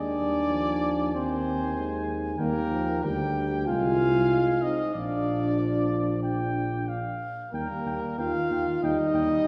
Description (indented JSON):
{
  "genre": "classical, brass quintet",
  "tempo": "94 BPM",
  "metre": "4/4",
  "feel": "straight",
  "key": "Eb major",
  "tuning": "A4 = 440 Hz",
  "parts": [
    { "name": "mellow cornet", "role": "melody", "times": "0.0-9.5 s", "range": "D5 to Ab5", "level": "-38 LUFS", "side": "equal", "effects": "none" },
    { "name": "warm trumpet", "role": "second line", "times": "0.0-9.5 s", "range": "Bb4 to G5", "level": "-36 LUFS", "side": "equal", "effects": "none" },
    { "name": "mellow French horn", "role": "accompaniment", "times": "0.0-9.5 s", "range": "Bb3 to G4", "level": "-30 LUFS", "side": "equal", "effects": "none" },
    { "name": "mellow trombone", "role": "accompaniment", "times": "0.0-9.5 s", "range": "Eb3 to C4", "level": "-38 LUFS", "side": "equal", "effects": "none" },
    { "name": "mellow tuba", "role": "bass", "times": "0.0-9.5 s", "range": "Bb1 to Eb2", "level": "-33 LUFS", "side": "equal", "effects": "none" }
  ],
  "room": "wet scoring stage reverb, RT60 2.0 s",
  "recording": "heard from further back in the room",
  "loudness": "-27 LUFS",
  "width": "mono",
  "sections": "0.0-9.5 A section",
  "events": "none",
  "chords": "0.0 Ab/Eb; 2.4 Eb; 3.7 Ab/C; 4.9 Bb; 7.5 Eb"
}